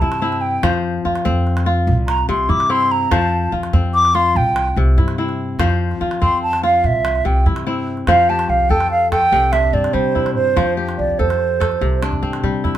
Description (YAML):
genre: west african traditional, West African string and xylophone music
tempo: 97 BPM (dotted quarters)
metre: 12/8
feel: straight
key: F major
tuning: A4 = 440 Hz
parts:
  - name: mellow hollow silver concert flute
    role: melody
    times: 0.0-12.0 s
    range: C5 to D6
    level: -16 LUFS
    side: right 2 dB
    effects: none
  - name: kora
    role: arpeggios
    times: 0.0-12.8 s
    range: C3 to C5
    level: -20 LUFS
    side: left 2 dB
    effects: none
  - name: upright bass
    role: bass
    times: 0.0-12.8 s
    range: C2 to C3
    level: -20 LUFS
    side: equal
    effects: none
  - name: calabash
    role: percussion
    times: 0.0-12.8 s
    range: none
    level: -24 LUFS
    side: right 1 dB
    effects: none
room: light reverb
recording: band playing live in one room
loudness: -14 LUFS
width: side -12 dB against mid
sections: 0.0-8.1 A section; 8.1-12.8 B section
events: flute solo 0.0-8.1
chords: 0.0 C; 0.6 F5; 1.9 C; 3.1 F; 4.4 C; 5.6 F5; 6.8 C; 8.1 F; 9.3 C; 10.6 F; 11.8 C